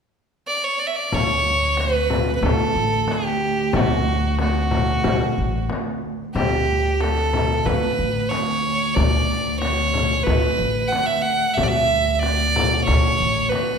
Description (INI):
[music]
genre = Arabic maqam ensemble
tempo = 92 BPM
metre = 4/4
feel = straight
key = D maqam ajam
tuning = A4 = 442 Hz
[part]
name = bright violin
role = melody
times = 0.5-13.8 s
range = F#4 to F#5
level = -21 LUFS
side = right 2 dB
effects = none
[part]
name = upright bass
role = bass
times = 1.1-13.5 s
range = A1 to D2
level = -24 LUFS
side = equal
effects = none
[part]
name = warm cello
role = drone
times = 1.1-13.8 s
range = D2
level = -28 LUFS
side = equal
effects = none
[part]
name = frame drum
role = percussion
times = 1.1-13.7 s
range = none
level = -24 LUFS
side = left 3 dB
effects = none
[sound]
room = wet recital hall reverb, RT60 1.3 s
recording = recorded in a church or concert hall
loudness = -18 LUFS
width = side -6 dB against mid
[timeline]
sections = 0.0-1.1 A section; 1.1-13.8 B section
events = none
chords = none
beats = 0.47 | 1.12 1.78 2.43 3.08 | 3.74 4.39 5.04 5.70 | 6.35 7.00 7.66 8.31 | 8.96 9.61 10.26 10.92 | 11.57 12.22 12.87 13.53